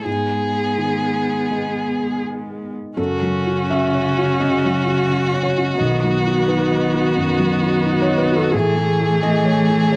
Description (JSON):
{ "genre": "neoclassical piano and strings", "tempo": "81-88 BPM", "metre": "4/4", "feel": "rubato", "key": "F# dorian", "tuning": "A4 = 439 Hz", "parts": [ { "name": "warm violin", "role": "melody", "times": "0.0-10.0 s", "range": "F#4 to G#4", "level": "-24 LUFS", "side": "equal", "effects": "none" }, { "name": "dark cello", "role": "second line", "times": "0.0-10.0 s", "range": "C#3 to B3", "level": "-26 LUFS", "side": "equal", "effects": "none" }, { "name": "felt-muted upright piano", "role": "accompaniment", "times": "0.0-10.0 s", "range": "B1 to E5", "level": "-23 LUFS", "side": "equal", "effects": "none" }, { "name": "warm viola", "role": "accompaniment", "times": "0.0-10.0 s", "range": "G#3 to C#4", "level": "-26 LUFS", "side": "equal", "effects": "none" } ], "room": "moderate booth ambience, RT60 0.2 s", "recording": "dry, close 1970s-style studio recording", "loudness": "-19 LUFS", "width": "mono", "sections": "0.0-3.0 A section; 3.0-10.0 A section", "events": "none", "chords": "0.1 G#m; 3.0 F#m; 5.8 B; 8.5 Amaj7" }